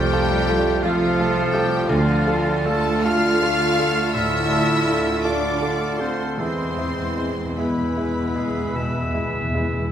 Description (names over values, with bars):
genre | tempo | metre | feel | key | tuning
classical | 50-57 BPM (dotted quarters) | 12/8 | rubato | unclear | A4 = 438 Hz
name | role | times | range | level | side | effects
clear baby grand piano | melody | 0.0-9.9 s | D2 to A4 | -25 LUFS | equal | none
warm studio violin section | melody | 0.0-9.9 s | F5 to F6 | -30 LUFS | left 3 dB | none
bright clarinet | second line | 0.0-9.9 s | E4 to E5 | -32 LUFS | left 1 dB | none
clear oboe | second line | 0.0-9.9 s | F4 to F5 | -30 LUFS | equal | none
concert flute | second line | 0.0-9.9 s | E6 to F6 | -32 LUFS | left 2 dB | none
rich studio violin section | second line | 0.0-9.9 s | F4 to F5 | -31 LUFS | left 2 dB | none
mellow bassoon | accompaniment | 0.0-9.9 s | D3 to F3 | -30 LUFS | equal | none
rich studio viola section | accompaniment | 0.0-9.9 s | G#3 to F4 | -31 LUFS | right 3 dB | none
mellow French horn section | sustained chords | 0.0-9.9 s | F3 to F4 | -28 LUFS | left 3 dB | none
warm trombone section | sustained chords | 0.0-9.9 s | D3 to A3 | -31 LUFS | right 4 dB | none
rich studio cello section | bass | 0.0-9.9 s | F3 to F4 | -30 LUFS | right 3 dB | none
rich studio double bass section | bass | 0.0-9.8 s | C2 to E2 | -29 LUFS | right 3 dB | none
timpani | percussion | 6.4-9.9 s | E2 | -29 LUFS | equal | none
room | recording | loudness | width
wet recital hall reverb, RT60 1.5 s | none | -18 LUFS | side -9 dB against mid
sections
0.0-9.9 A section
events
timpani fill 6.4-9.9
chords
0.0 F/C; 1.9 Dm; 6.4 E